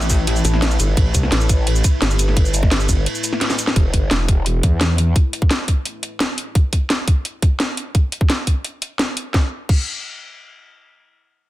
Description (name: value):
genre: dark technical drum and bass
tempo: 172 BPM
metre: 4/4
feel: straight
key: unclear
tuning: A4 = 441 Hz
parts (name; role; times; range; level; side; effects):
- deep dark ambient pad; sustained chords; 0.0-3.7 s; A3 to B4; -29 LUFS; left 2 dB; chorus, built-in reverb, sidechain pumping
- drum and bass drum kit; drums; 0.0-9.8 s; crash cymbal, hi-hat, ride cymbal, shaker, snare drum; -21 LUFS; equal; none
- electronic kick drum; drums; 0.1-9.8 s; none; -16 LUFS; equal; none
- growl bass; bass; 0.4-5.1 s; E1 to E2; -18 LUFS; equal; chorus, overdrive, sidechain pumping
room: digital ambience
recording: dense, heavily limited modern master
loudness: -16 LUFS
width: side -16 dB against mid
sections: 0.0-3.8 A section; 3.8-9.3 B section; 9.3-11.5 C section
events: drop 0.0-3.8; break 3.1-3.8; drum fill 3.4-3.8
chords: 0.0 Asus2; 3.8 N.C.